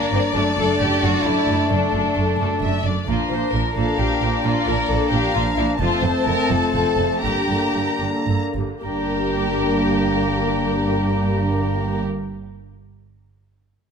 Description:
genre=cinematic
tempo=70-89 BPM (dotted quarters)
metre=6/8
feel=straight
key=G minor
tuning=A4 = 437 Hz
part: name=warm symphonic violin section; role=melody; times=0.0-12.0 s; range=A4 to Bb5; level=-28 LUFS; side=left 4 dB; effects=none
part: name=clear oboe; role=second line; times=0.0-12.0 s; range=A5 to Bb5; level=-28 LUFS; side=right 2 dB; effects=none
part: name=dark clarinet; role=second line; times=0.0-12.0 s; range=C4 to A4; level=-28 LUFS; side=left 2 dB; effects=none
part: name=warm symphonic violin section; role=second line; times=0.0-12.0 s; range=C4 to C5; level=-25 LUFS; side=left 3 dB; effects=none
part: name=dark symphonic viola section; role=accompaniment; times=0.0-12.0 s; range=D3 to G4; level=-28 LUFS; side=right 1 dB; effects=none
part: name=warm French horn section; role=sustained chords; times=0.0-12.0 s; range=A3 to D4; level=-27 LUFS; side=left 3 dB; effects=none
part: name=dark studio cello section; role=bass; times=0.1-12.0 s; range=F2 to Bb2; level=-27 LUFS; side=right 4 dB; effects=none
part: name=dark symphonic double bass section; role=bass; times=0.1-12.0 s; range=F1 to Bb1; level=-25 LUFS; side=right 3 dB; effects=none
room=moderate scoring stage reverb, RT60 1.8 s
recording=close, detailed microphones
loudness=-18 LUFS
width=side -6 dB against mid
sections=0.0-8.8 A section; 8.8-12.2 B section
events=slowing down 5.1-8.8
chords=0.3 D/F#; 3.1 Bb; 5.8 F; 7.2 Gm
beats=| 0.35 1.03 | 1.71 2.40 | 3.08 3.77 | 4.45 5.13 | 5.81 6.50 | 7.24 8.01 | 8.84 9.69 | 10.54 11.39

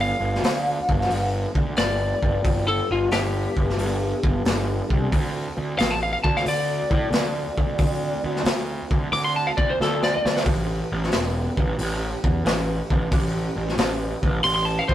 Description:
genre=blues rock power trio and southern rock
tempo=90 BPM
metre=4/4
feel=swing 68% on 8ths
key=unclear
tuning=A4 = 439 Hz
part: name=lightly driven lead guitar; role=melody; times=0.0-14.9 s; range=F4 to D6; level=-24 LUFS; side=left 1 dB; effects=none
part: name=percussive tonewheel organ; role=sustained chords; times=0.0-14.9 s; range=A3 to C5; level=-35 LUFS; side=right 6 dB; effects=slow rotary speaker, chorus vibrato
part: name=fuzz picked electric bass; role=bass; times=0.0-14.9 s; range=E1 to A2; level=-25 LUFS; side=equal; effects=overdrive
part: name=raw garage drum kit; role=drums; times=0.3-14.9 s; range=hi-hat, kick drum, snare drum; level=-24 LUFS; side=equal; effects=none
room=light reverb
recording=rough rehearsal-room recording, warm saturation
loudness=-20 LUFS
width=side -12 dB against mid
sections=0.0-14.9 A section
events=lead electric guitar solo 0.0-14.9; drum fill 9.8-10.5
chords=0.0 G7; 5.1 D7; 10.5 A7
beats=0.43 1.10 1.77 | 2.44 3.11 3.78 4.45 | 5.12 5.79 6.45 7.12 | 7.79 8.46 9.12 9.79 | 10.46 11.12 11.79 12.45 | 13.12 13.78 14.45

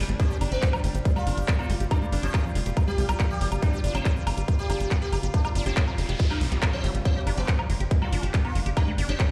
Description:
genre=psychedelic trance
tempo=140 BPM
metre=4/4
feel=straight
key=unclear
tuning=A4 = 439 Hz
part: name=sitar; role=melody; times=0.0-9.3 s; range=B3 to G4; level=-36 LUFS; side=equal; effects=phaser, sidechain pumping, delay
part: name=overtone-sweeping drone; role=sustained chords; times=0.0-9.3 s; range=G3 to F4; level=-40 LUFS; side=equal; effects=chorus, built-in reverb, phaser, sidechain pumping
part: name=liquid acid bass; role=riff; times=0.0-9.3 s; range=F3 to G4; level=-38 LUFS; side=equal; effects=phaser, sidechain pumping, delay
part: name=tight sequencer bass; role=bass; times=0.0-9.2 s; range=F1 to C2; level=-28 LUFS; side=equal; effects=none
part: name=techno drum kit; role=drums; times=0.1-9.3 s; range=handclaps, hi-hat, woodblock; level=-36 LUFS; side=equal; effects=none
part: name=electronic kick drum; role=drums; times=0.2-9.3 s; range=none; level=-26 LUFS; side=equal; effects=none
part: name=noise sweep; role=sound effects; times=5.5-7.1 s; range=none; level=-41 LUFS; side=equal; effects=none
room=little or no reverb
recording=played on a big sound system in a bare room, stone room reverb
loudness=-25 LUFS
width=mono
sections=0.0-9.3 A section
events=noise sweep 5.5-7.1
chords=0.0 G5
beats=| 0.20 0.62 1.05 1.48 | 1.91 2.34 2.77 3.20 | 3.62 4.05 4.48 4.91 | 5.34 5.77 6.20 6.62 | 7.05 7.48 7.91 8.34 | 8.77 9.20

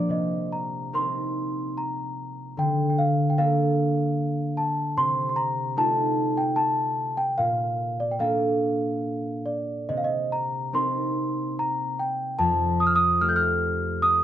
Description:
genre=celtic folk, Celtic slow air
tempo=73 BPM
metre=3/4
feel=uneven beats, rubato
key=C dorian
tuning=A4 = 440 Hz
part: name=celesta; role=melody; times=0.0-14.2 s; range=D5 to G6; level=-25 LUFS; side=equal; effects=none
part: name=concert harp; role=accompaniment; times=0.0-14.2 s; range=F2 to G5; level=-26 LUFS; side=equal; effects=none
room=moderate recital hall reverb, RT60 1.4 s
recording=close, detailed microphones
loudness=-22 LUFS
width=side -11 dB against mid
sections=0.1-14.2 A section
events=none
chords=0.1 Cm7; 2.6 Bbmaj7/D; 5.0 F7/C; 7.4 Bbmaj7; 9.9 Cm7; 12.4 Fadd9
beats=| 0.09 0.93 1.75 | 2.57 3.38 4.18 | 4.97 5.77 6.57 | 7.38 8.19 9.03 | 9.88 10.73 11.57 | 12.39 13.22 14.03

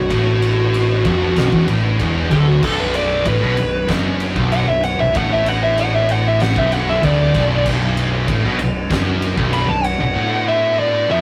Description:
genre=stoner and doom metal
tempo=96 BPM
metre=4/4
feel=straight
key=B minor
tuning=A4 = 440 Hz
part: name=fuzz lead guitar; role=melody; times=0.0-11.2 s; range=F#4 to B5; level=-21 LUFS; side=equal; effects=distortion
part: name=bright tonewheel organ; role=sustained chords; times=0.0-11.2 s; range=B3 to F#4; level=-33 LUFS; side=equal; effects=none
part: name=scooped high-gain guitar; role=riff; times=0.0-11.2 s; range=B1 to B2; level=-27 LUFS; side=equal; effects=distortion
part: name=thick fuzz guitar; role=riff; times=0.0-11.2 s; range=B1 to B2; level=-25 LUFS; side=equal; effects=distortion
part: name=thick fuzz guitar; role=riff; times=0.0-11.2 s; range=B1 to B2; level=-23 LUFS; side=equal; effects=distortion
part: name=fuzz fingered electric bass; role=bass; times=0.0-10.1 s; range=B0 to B1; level=-28 LUFS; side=equal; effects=overdrive
part: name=oversized low-tuned drum kit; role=drums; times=0.1-10.0 s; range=crash cymbal, kick drum, ride cymbal, snare drum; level=-26 LUFS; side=equal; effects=none
room=moderate studio reverb, RT60 0.6 s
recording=rough rehearsal-room recording, tube saturation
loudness=-17 LUFS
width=mono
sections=0.0-11.2 A section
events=lead electric guitar solo 0.0-11.2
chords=0.0 Bm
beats=| 0.10 0.74 1.37 2.00 | 2.63 3.26 3.89 4.52 | 5.15 5.78 6.41 7.03 | 7.66 8.29 8.91 9.54 | 10.16 10.79

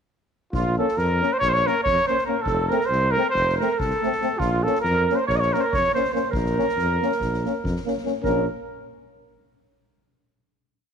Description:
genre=balkan folk, Balkan brass band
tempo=281 BPM (eighths)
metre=9/8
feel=straight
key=Bb harmonic minor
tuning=A4 = 441 Hz
part: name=mellow trumpet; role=melody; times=0.5-8.5 s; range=F4 to Eb5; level=-23 LUFS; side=left 1 dB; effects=none
part: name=mellow clarinet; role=second line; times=0.5-8.5 s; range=F4 to Eb5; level=-28 LUFS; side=right 9 dB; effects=none
part: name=mellow tuba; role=bass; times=0.5-8.5 s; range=F1 to F2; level=-26 LUFS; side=left 1 dB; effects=none
part: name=soft-mallet drum kit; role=percussion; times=0.5-8.5 s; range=kick drum, snare drum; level=-34 LUFS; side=left 1 dB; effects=none
part: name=warm euphonium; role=accompaniment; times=0.8-8.5 s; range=A3 to Bb3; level=-31 LUFS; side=right 10 dB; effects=none
part: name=warm trombone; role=accompaniment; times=0.8-8.5 s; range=C4 to Db4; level=-29 LUFS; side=left 14 dB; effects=none
room=moderate echo chamber reverb, RT60 1.8 s, small room ambience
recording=1960s-style stereo with parts hard left and right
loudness=-20 LUFS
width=side -7 dB against mid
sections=0.5-8.2 A section; 8.2-10.1 final chord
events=none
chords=0.5 Bbm; 2.5 F; 4.4 Bbm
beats=| 0.54 0.75 0.96 1.18 1.39 1.61 1.82 2.04 2.25 | 2.47 2.68 2.90 3.11 3.33 3.54 3.75 3.97 4.18 | 4.40 4.61 4.83 5.04 5.26 5.47 5.68 5.90 6.11 | 6.32 6.54 6.75 6.96 7.17 7.39 7.60 7.81 8.02 | 8.23 8.44

